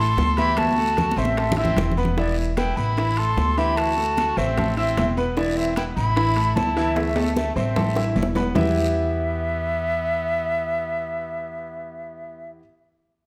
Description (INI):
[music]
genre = latin, Cuban son and guajira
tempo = 150 BPM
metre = 4/4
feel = straight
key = E minor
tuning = A4 = 440 Hz
[part]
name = concert flute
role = melody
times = 0.0-12.5 s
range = D5 to C6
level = -27 LUFS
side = equal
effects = none
[part]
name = brilliant trumpet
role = second line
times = 0.0-12.5 s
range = A3 to A4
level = -36 LUFS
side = equal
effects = none
[part]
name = bright concert grand piano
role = arpeggios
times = 0.0-12.6 s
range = E3 to E6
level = -29 LUFS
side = equal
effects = none
[part]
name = upright bass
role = bass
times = 0.0-12.6 s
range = E1 to E2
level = -28 LUFS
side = equal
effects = none
[part]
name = bongos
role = percussion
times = 0.2-8.7 s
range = none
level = -36 LUFS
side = equal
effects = none
[part]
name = congas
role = percussion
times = 0.2-8.7 s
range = none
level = -30 LUFS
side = equal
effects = none
[part]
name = guiro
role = percussion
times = 0.2-8.7 s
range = none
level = -43 LUFS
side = equal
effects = none
[part]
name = timbales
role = percussion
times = 0.2-8.7 s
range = none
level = -33 LUFS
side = equal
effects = none
[sound]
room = moderate large studio reverb, RT60 1.3 s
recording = none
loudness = -22 LUFS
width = mono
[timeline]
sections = 0.0-8.6 A section; 8.6-11.7 B section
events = drum fill 0.6-2.2, 7.0-8.6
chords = 0.0 Am; 0.6 Dadd9; 1.4 E5; 3.0 Am; 3.8 Dadd9; 4.6 E5; 6.2 A5; 7.0 Dsus2; 7.8 Am; 8.6 Em